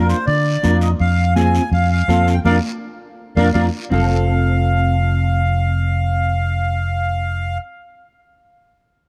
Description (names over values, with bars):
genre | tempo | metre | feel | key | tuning
latin, cumbia | 164 BPM | 4/4 | straight | unclear | A4 = 442 Hz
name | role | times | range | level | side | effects
accordion | melody | 0.0-7.6 s | Bb4 to Ab5 | -24 LUFS | equal | none
clean electric guitar | accompaniment | 0.0-7.6 s | C4 to Bb4 | -27 LUFS | equal | ensemble chorus
fingered electric bass | bass | 0.0-7.6 s | F1 to D3 | -19 LUFS | equal | none
guiro | percussion | 0.1-4.0 s | none | -38 LUFS | equal | none
congas | percussion | 0.3-4.0 s | none | -25 LUFS | equal | none
room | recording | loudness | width
light reverb | none | -17 LUFS | mono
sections
0.0-3.9 A section; 3.9-6.8 B section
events
band accent 2.5-3.9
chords
0.0 Bb/F; 1.0 Fm; 1.7 F; 2.5 Bb/F; 3.9 F